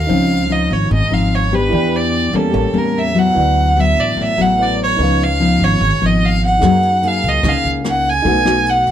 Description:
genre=bossa nova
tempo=147 BPM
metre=4/4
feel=straight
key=unclear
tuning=A4 = 442 Hz
part: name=rich fiddle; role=melody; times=0.0-8.9 s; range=A4 to Ab5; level=-16 LUFS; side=right 2 dB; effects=none
part: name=dark baby grand piano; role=accompaniment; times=0.0-8.9 s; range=Db4 to A5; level=-24 LUFS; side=right 1 dB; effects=none
part: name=nylon-string guitar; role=accompaniment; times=0.0-8.9 s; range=Ab2 to Ab4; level=-17 LUFS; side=left 3 dB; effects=none
part: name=upright bass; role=bass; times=0.0-8.9 s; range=Ab1 to Gb2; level=-19 LUFS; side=right 1 dB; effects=none
part: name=jazz brush drum kit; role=drums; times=6.6-8.9 s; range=hi-hat, kick drum, rim click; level=-22 LUFS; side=right 1 dB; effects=none
room=light reverb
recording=none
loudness=-12 LUFS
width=side -10 dB against mid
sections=0.1-8.9 A section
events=none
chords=0.1 Dbmaj9; 1.7 Em7; 2.5 A7b9; 3.4 D69; 5.0 Db9; 6.6 Gb69; 8.3 Cb7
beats=| 0.09 0.50 0.91 1.31 | 1.72 2.13 2.54 2.95 | 3.35 3.76 4.17 4.58 | 4.99 5.40 5.81 6.21 | 6.62 7.03 7.44 7.85 | 8.26 8.66

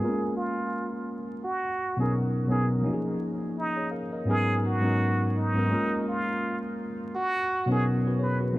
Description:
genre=hip hop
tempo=84 BPM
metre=4/4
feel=swing 57% on 16ths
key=unclear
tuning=A4 = 442 Hz
part: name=trumpet with plunger mute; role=melody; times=0.0-8.4 s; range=D#4 to B4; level=-30 LUFS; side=right 1 dB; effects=low-pass filter, dub echo
part: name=mellow tine electric piano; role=accompaniment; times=0.0-8.6 s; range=G#2 to E#5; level=-26 LUFS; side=equal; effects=low-pass filter, dub echo
room=light reverb, small room ambience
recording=echo-heavy mix, vinyl crackle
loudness=-25 LUFS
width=side -17 dB against mid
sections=0.0-8.6 A section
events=filter sweep 0.0-8.6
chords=0.0 A#m7; 1.4 Bmaj13; 2.9 D#9sus4; 4.3 G#m11; 5.7 A#m7; 7.1 Bmaj13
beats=0.00 0.71 | 1.43 2.14 2.85 3.57 | 4.28 5.00 5.71 6.43 | 7.14 7.86 8.57

